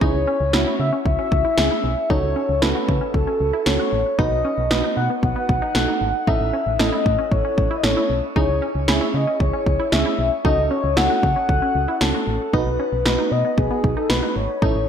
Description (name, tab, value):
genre	synth-pop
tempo	115 BPM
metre	4/4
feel	straight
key	C# minor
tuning	A4 = 440 Hz
part	mellow horn-like synth lead	melody	0.0-14.9 s	G#4 to F#5	-22 LUFS	left 3 dB	chorus, shimmer reverb, ping-pong delay
part	FM electric piano with tremolo	accompaniment	0.0-14.9 s	C#4 to B4	-26 LUFS	right 6 dB	shimmer reverb
part	wide unison pluck	arpeggios	0.0-14.8 s	B3 to F#4	-28 LUFS	moving between left 3 dB and right 3 dB	auto-pan, shimmer reverb, ping-pong delay
part	solid FM bass	bass	0.0-14.9 s	G#1 to C#3	-23 LUFS	equal	none
part	deep house drum kit	drums	0.0-14.7 s	kick drum, snare drum	-22 LUFS	equal	overdrive, gated reverb
room	moderate plate reverb, RT60 1.4 s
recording	bright 1980s-style digital production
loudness	-17 LUFS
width	side -8 dB against mid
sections	0.0-14.9 A section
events	none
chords	0.0 C#m; 2.1 F#m/C#; 4.2 B; 6.3 A; 8.4 C#m; 10.4 F#m/C#; 12.5 B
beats	| 0.01 0.54 1.06 1.58 | 2.10 2.62 3.14 3.67 | 4.19 4.71 5.23 5.75 | 6.27 6.80 7.32 7.84 | 8.36 8.88 9.40 9.93 | 10.45 10.97 11.49 12.01 | 12.54 13.06 13.58 14.10 | 14.62